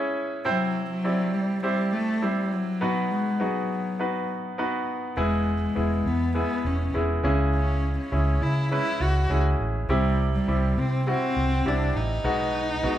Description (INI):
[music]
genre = pop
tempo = 102 BPM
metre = 4/4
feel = straight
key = unclear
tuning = A4 = 442 Hz
[part]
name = clear concert grand piano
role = accompaniment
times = 0.0-13.0 s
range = B2 to G5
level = -27 LUFS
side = equal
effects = none
[part]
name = warm cello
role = melody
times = 0.5-13.0 s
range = F#3 to F#4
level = -27 LUFS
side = left 1 dB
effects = none
[part]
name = vintage muted fingered electric bass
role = bass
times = 5.2-13.0 s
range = E1 to C#3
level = -25 LUFS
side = equal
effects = none
[sound]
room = light reverb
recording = band playing live in one room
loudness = -23 LUFS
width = side -12 dB against mid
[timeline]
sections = 0.0-13.0 A section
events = none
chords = 0.5 C; 2.8 B; 5.2 E; 7.2 C#m; 9.9 C; 12.2 B6